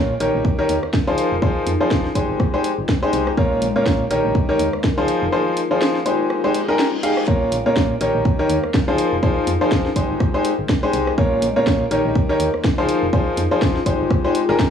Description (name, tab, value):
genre	piano house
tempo	123 BPM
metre	4/4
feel	swing 57% on 16ths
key	Bb dorian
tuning	A4 = 440 Hz
part	clear grand piano	riff	0.0-14.6 s	Bb2 to F5	-19 LUFS	left 1 dB	sidechain pumping, analog delay
part	solid FM bass	bass	0.0-14.6 s	F1 to Bb2	-26 LUFS	right 1 dB	tube saturation, sidechain pumping
part	granular cloud pad	texture	0.2-14.7 s	Ab3 to Bb5	-27 LUFS	left 1 dB	built-in reverb, sidechain pumping
part	garage drum kit	drums	0.2-14.7 s	hi-hat, rim click, snare drum	-25 LUFS	equal	overdrive
part	electronic kick drum	drums	0.4-14.7 s	none	-20 LUFS	equal	overdrive
part	reverse cymbal	sound effects	6.5-7.3 s	none	-33 LUFS	left 5 dB	none
room	light reverb, digital ambience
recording	dry, gritty hardware recording, small room ambience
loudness	-16 LUFS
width	side -8 dB against mid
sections	0.0-14.7 A section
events	reverse cymbal 6.5-7.3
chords	0.4 Eb7; 1.2 Fm7; 2.2 Abmaj7; 3.4 Bbm; 4.3 Eb7; 5.1 Fm7; 6.1 Abmaj7; 7.3 Bbm; 8.3 Eb7; 9.0 Fm7; 10.0 Abmaj7; 11.2 Bbm; 12.2 Eb7; 12.9 Fm7; 13.9 Abmaj7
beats	0.45 0.94 | 1.42 1.91 2.40 2.89 | 3.37 3.86 4.35 4.84 | 5.33 5.81 6.30 6.79 | 7.28 7.76 8.25 8.74 | 9.23 9.72 10.20 10.69 | 11.18 11.67 12.15 12.64 | 13.13 13.62 14.11 14.59